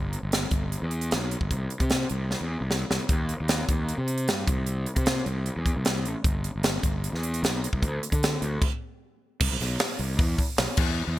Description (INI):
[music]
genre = math rock and midwest emo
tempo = 152 BPM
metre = 4/4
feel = straight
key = unclear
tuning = A4 = 440 Hz
[part]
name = fuzz fingered electric bass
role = bass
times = 0.0-11.2 s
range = G1 to D3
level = -28 LUFS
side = equal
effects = overdrive
[part]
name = crisp fusion drum kit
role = drums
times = 0.1-10.9 s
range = crash cymbal, hi-hat, kick drum, snare drum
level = -26 LUFS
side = equal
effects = gated reverb
[sound]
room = light reverb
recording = bright 1980s-style digital production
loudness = -24 LUFS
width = side -15 dB against mid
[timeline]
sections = 0.0-9.4 A section; 9.4-11.2 B section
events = drum fill 2.3-3.1; stop 8.6-9.4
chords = none